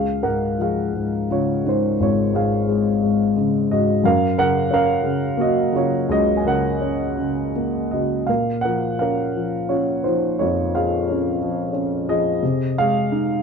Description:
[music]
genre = classical, lyrical solo piano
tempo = 81-91 BPM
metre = 3/4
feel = rubato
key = Db major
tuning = A4 = 441 Hz
[part]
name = dark baby grand piano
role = solo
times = 0.0-13.4 s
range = Ab1 to Ab5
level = -18 LUFS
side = equal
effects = none
[sound]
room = light reverb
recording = dark, warm production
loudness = -18 LUFS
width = side -6 dB against mid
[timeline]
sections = 0.0-13.4 A section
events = none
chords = 0.0 Db; 4.0 Gb; 8.3 Bbm; 12.4 Ab/C

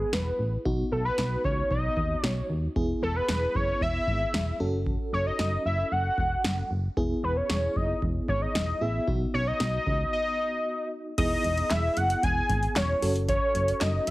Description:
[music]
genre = synth-pop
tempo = 114 BPM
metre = 4/4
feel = straight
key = E major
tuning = A4 = 442 Hz
[part]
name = fat analog lead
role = melody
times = 0.0-14.1 s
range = G#4 to G#5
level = -28 LUFS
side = equal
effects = chorus, slapback echo
[part]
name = FM electric piano with tremolo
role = accompaniment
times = 0.0-14.1 s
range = B3 to A4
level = -34 LUFS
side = right 1 dB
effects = none
[part]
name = solid FM bass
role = bass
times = 0.0-14.1 s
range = E1 to D#2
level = -29 LUFS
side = equal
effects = none
[part]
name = electro analog drum machine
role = drums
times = 0.1-14.1 s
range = crash cymbal, handclaps, hi-hat, kick drum, snare drum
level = -31 LUFS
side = equal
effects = none
[sound]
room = light reverb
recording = heavily compressed radio sound, multiband compression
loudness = -25 LUFS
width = side -18 dB against mid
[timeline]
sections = 0.0-11.2 A section; 11.2-14.1 B section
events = break 10.1-11.2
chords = 0.0 E; 0.7 B; 2.8 E; 4.6 F#m; 7.0 E; 9.1 B; 11.2 E; 13.0 F#m

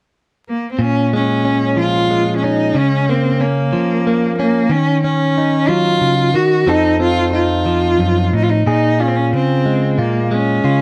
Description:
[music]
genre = acoustic folk-pop ballad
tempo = 92 BPM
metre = 3/4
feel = straight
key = Bb minor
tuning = A4 = 440 Hz
[part]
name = clear cello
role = melody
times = 0.5-10.8 s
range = Bb3 to Gb4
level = -19 LUFS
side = equal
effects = none
[part]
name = direct-recorded clean electric guitar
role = accompaniment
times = 0.8-10.8 s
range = F2 to A4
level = -18 LUFS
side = equal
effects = none
[sound]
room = light reverb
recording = close, detailed microphones, vinyl crackle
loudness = -15 LUFS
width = mono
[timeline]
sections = 0.8-8.7 A section; 8.7-10.8 B section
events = none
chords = 0.0 N.C.; 0.8 Bbm7; 2.8 Db6; 4.7 Ebm7; 6.7 F7; 8.7 Bbm7

